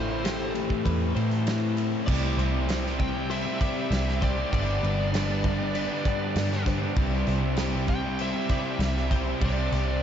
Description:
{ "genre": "rock, shoegaze and dream pop", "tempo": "98 BPM", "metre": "4/4", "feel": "straight", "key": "C major", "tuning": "A4 = 442 Hz", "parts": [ { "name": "bluesy overdriven lead guitar", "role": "melody", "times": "0.0-10.0 s", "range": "C5 to G5", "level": "-35 LUFS", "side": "equal", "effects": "distortion, tape echo" }, { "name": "twelve-string electric guitar", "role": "arpeggios", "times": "0.0-10.0 s", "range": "E4 to D5", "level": "-37 LUFS", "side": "left 5 dB", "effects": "wide subtle chorus, tape echo" }, { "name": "distorted electric guitar", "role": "riff", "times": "0.0-10.0 s", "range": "G2 to E4", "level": "-35 LUFS", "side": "equal", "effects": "distortion" }, { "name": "overdriven electric guitar", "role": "riff", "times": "0.0-10.0 s", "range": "G2 to G4", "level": "-32 LUFS", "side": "right 6 dB", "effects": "reverse reverb" }, { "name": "thick fuzz guitar", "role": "riff", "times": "0.0-10.0 s", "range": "G2 to C4", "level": "-32 LUFS", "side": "left 6 dB", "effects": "distortion, wide subtle chorus" }, { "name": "vintage muted picked electric bass", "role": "bass", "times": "0.0-10.0 s", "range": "G1 to A2", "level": "-28 LUFS", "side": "equal", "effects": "none" }, { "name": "loose indie drum kit", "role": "drums", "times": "0.2-9.9 s", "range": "crash cymbal, kick drum, ride cymbal, snare drum", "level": "-31 LUFS", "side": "equal", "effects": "none" }, { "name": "tambourine", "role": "percussion", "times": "0.2-9.9 s", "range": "none", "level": "-50 LUFS", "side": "right 10 dB", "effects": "none" } ], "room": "moderate huge ambient reverb, RT60 6.9 s", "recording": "dreamy mix soaked in reverb, nothing above 7.8 kHz", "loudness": "-24 LUFS", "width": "side -9 dB against mid", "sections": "0.0-2.1 A section; 2.1-10.0 B section", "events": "none", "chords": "0.0 Am7; 2.1 Cadd9; 4.5 G; 7.0 Cadd9; 9.4 Csus2", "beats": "0.24 0.85 1.47 | 2.08 2.69 3.30 3.91 | 4.53 5.14 5.75 6.36 | 6.97 7.58 8.20 8.81 | 9.42" }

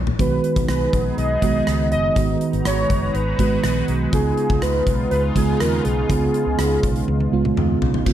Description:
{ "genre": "1980s-style pop", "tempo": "122 BPM", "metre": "4/4", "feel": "straight", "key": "unclear", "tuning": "A4 = 445 Hz", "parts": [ { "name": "vintage muted fingered electric bass", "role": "bass", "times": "0.0-8.1 s", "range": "F#1 to Eb2", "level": "-23 LUFS", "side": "left 1 dB", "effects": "none" }, { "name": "gated 80s drum kit", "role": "drums", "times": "0.1-8.1 s", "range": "crash cymbal, hi-hat, kick drum, rim click, toms", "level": "-23 LUFS", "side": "left 1 dB", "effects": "none" }, { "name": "warm velvety synth lead", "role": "melody", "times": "0.2-7.6 s", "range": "Ab4 to D#5", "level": "-23 LUFS", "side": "equal", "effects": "chorus, tape echo" }, { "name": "mellow FM electric piano", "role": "accompaniment", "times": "0.2-8.1 s", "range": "Db3 to F#4", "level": "-22 LUFS", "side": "right 5 dB", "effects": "chorus" }, { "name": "sweeping resonant pad", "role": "sustained chords", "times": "0.2-8.1 s", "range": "Db3 to Bb5", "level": "-28 LUFS", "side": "left 2 dB", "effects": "chorus" } ], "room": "studio reverb", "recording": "none", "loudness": "-17 LUFS", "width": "side -11 dB against mid", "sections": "0.0-8.1 A section", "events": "drum fill 0.0, 7.1-8.1", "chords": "0.2 B6; 2.2 Abm7; 4.1 Db7", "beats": "| 0.19 0.69 1.18 1.67 | 2.16 2.65 3.15 3.64 | 4.13 4.62 5.11 5.60 | 6.10 6.59 7.08 7.57 | 8.06" }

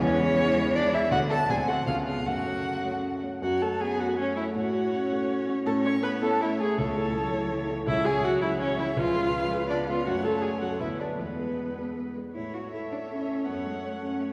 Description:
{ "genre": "quick classical-period movement for piano quintet", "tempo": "162 BPM", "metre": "3/4", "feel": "rubato", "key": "F# minor, A major from 7.9 s", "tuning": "A4 = 440 Hz", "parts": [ { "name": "dark violin", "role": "melody", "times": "0.0-14.3 s", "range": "B4 to C#6", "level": "-34 LUFS", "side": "equal", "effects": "none" }, { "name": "rich cello", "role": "second line", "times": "0.0-14.3 s", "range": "C#3 to F#4", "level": "-36 LUFS", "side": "equal", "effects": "none" }, { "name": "rich violin", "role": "second line", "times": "0.0-14.3 s", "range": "C#4 to C#5", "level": "-38 LUFS", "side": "equal", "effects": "none" }, { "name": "dark concert grand piano", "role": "accompaniment", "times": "0.0-14.3 s", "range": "C#2 to D5", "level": "-34 LUFS", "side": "equal", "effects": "none" }, { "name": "rich viola", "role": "accompaniment", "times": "0.0-14.3 s", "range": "G#3 to C#5", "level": "-33 LUFS", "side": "equal", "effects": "none" } ], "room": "wet church reverb, RT60 3.6 s", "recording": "recorded in a church or concert hall", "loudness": "-28 LUFS", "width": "mono", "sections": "0.0-3.4 A section; 3.4-12.4 A section; 12.4-14.3 B section", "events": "none", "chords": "0.0 C#m/E; 1.1 Bm/D; 1.5 D7; 1.9 C#7; 2.3 F#m; 4.6 F#m/A; 5.7 A; 6.8 A/C#; 7.9 C#m; 9.0 C#7; 10.1 F#m; 10.8 Bm/D; 11.2 E; 12.4 A; 13.5 F#m", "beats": "| 0.01 0.38 0.74 | 1.11 1.49 1.87 | 2.26 2.65 3.04 | 3.43 3.81 4.18 | 4.55 4.93 5.29 | 5.66 6.03 6.41 | 6.78 7.14 7.51 | 7.87 8.23 8.60 | 8.97 9.33 9.70 | 10.06 10.43 10.80 | 11.19 11.58 11.97 | 12.35 12.73 13.10 | 13.47 13.84 14.21" }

